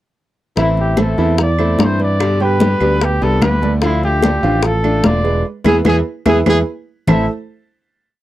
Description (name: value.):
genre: latin, Cuban son and guajira.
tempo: 147 BPM.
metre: 4/4.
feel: straight.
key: A minor.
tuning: A4 = 440 Hz.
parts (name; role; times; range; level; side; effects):
warm trumpet; melody; 0.6-7.3 s; E4 to E5; -19 LUFS; equal; none.
nylon-string guitar; accompaniment; 0.6-7.2 s; A2 to G4; -20 LUFS; left 3 dB; none.
warm grand piano; arpeggios; 0.6-7.3 s; E3 to A5; -20 LUFS; right 4 dB; none.
picked electric bass; bass; 0.6-7.3 s; E1 to G2; -17 LUFS; equal; none.
bongos; percussion; 0.6-7.2 s; none; -21 LUFS; left 5 dB; none.
congas; percussion; 0.6-7.2 s; none; -19 LUFS; left 1 dB; none.
claves; percussion; 1.0-7.2 s; none; -28 LUFS; right 13 dB; none.
room: little or no reverb.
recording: dry, close 1970s-style studio recording.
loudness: -13 LUFS.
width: side -14 dB against mid.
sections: 0.6-7.1 verse; 7.1-8.2 final chord.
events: band accent 5.5-7.1.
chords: 0.6 Am; 2.2 G; 3.8 Dm; 5.5 E; 7.1 Am.